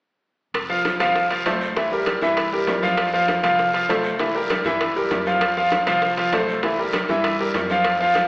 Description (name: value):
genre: latin, salsa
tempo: 197 BPM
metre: 4/4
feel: straight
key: F major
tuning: A4 = 443 Hz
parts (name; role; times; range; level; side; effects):
- upright bass; bass; 0.5-8.2 s; F1 to G2; -38 LUFS; equal; none
- bongos; percussion; 0.5-8.3 s; none; -30 LUFS; left 1 dB; none
- congas; percussion; 0.5-8.3 s; none; -34 LUFS; equal; none
- timbales; percussion; 0.5-8.3 s; none; -27 LUFS; right 1 dB; none
- guiro; percussion; 0.6-8.3 s; none; -35 LUFS; right 1 dB; none
- bright concert grand piano; accompaniment; 0.7-8.3 s; E3 to F5; -19 LUFS; equal; none
room: wet scoring stage reverb, RT60 1.7 s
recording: recorded in a church or concert hall, AM radio sound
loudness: -18 LUFS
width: side -26 dB against mid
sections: 0.5-8.3 A section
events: none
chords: 0.5 F; 1.8 C7; 3.0 F; 4.2 C7; 5.4 F; 6.6 C7